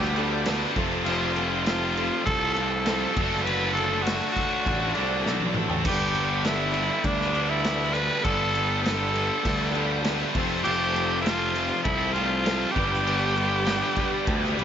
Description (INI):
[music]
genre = classic rock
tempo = 100 BPM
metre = 4/4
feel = straight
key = G mixolydian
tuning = A4 = 438 Hz
[part]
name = raspy tenor saxophone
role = melody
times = 0.0-14.6 s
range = D4 to B4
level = -28 LUFS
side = equal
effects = digital delay
[part]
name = picked twelve-string acoustic guitar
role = accompaniment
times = 0.0-14.6 s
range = F2 to A4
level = -37 LUFS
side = left 4 dB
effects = none
[part]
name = warm upright piano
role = accompaniment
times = 0.0-14.6 s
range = A3 to C5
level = -37 LUFS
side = right 2 dB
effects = none
[part]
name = tonewheel organ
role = sustained chords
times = 0.0-14.6 s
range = F3 to B4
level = -39 LUFS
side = equal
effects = none
[part]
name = tight distorted guitar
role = riff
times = 0.0-14.6 s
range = F3 to B4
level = -31 LUFS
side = equal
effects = distortion
[part]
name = tight distorted guitar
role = riff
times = 0.0-14.6 s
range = F2 to D4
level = -31 LUFS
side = equal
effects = distortion
[part]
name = fuzz picked electric bass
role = bass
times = 0.0-14.6 s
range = F1 to D2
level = -30 LUFS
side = equal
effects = overdrive
[part]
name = vintage drum kit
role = drums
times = 0.0-14.6 s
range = crash cymbal, kick drum, snare drum, toms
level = -29 LUFS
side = equal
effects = none
[sound]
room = little or no reverb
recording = nothing above 7.6 kHz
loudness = -22 LUFS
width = side -8 dB against mid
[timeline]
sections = 0.0-14.6 A section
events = drum fill 5.3-5.9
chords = 0.0 Gadd9; 0.8 F; 3.2 D/F#; 5.9 Gadd9; 10.4 F; 12.8 G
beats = 0.46 | 1.06 1.66 2.26 2.86 | 3.46 4.05 4.65 5.25 | 5.85 6.45 7.05 7.65 | 8.25 8.86 9.46 10.06 | 10.66 11.26 11.86 12.47 | 13.07 13.67 14.28